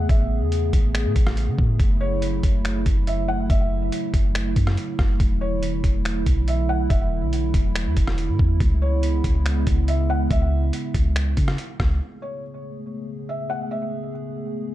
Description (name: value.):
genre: hip hop, atmospheric cloud-rap.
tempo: 141 BPM.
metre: 4/4.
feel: half-time.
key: A major.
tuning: A4 = 440 Hz.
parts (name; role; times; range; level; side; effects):
felt-muted upright piano; melody; 0.0-14.1 s; C#5 to F#5; -30 LUFS; equal; tape echo.
dark analog pad; sustained chords; 0.0-14.7 s; C#3 to G#4; -28 LUFS; right 1 dB; chorus, sidechain pumping.
soft 808-style bass; bass; 0.0-12.0 s; E1 to C#3; -22 LUFS; equal; none.
trip hop sampler-style drum kit; drums; 0.1-11.9 s; finger snaps, hi-hat, kick drum, rim click; -22 LUFS; equal; none.
room: little or no reverb.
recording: dark, warm production.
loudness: -19 LUFS.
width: side -14 dB against mid.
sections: 0.0-12.0 A section; 12.0-14.7 B section.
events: none.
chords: 0.0 Amaj9; 1.8 F#m7; 5.2 E9sus4; 8.6 C#m7; 12.0 Amaj9.